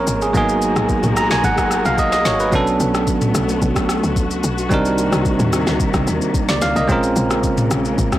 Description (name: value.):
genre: amapiano.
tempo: 110 BPM.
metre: 4/4.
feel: straight.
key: unclear.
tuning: A4 = 440 Hz.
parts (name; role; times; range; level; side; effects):
bell-like tine electric piano; accompaniment; 0.0-8.2 s; F3 to Bb5; -18 LUFS; right 2 dB; none.
dark studio string section; sustained chords; 0.0-8.2 s; C3 to Bb4; -23 LUFS; left 3 dB; sidechain pumping.
tight log drum bass; bass; 0.0-8.2 s; Ab1 to Eb2; -23 LUFS; left 1 dB; none.
smooth R&B drum kit; drums; 0.1-8.2 s; kick drum, rim click, shaker, snare drum, toms; -21 LUFS; left 1 dB; none.
room: light reverb.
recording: blown-out, overdriven recording, overdrive.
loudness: -15 LUFS.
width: side -14 dB against mid.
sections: 0.0-8.2 A section.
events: tine electric piano fill 0.9-2.5.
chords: 0.3 Abm9; 2.5 Bm9; 4.7 Cm9; 6.9 Bbm9.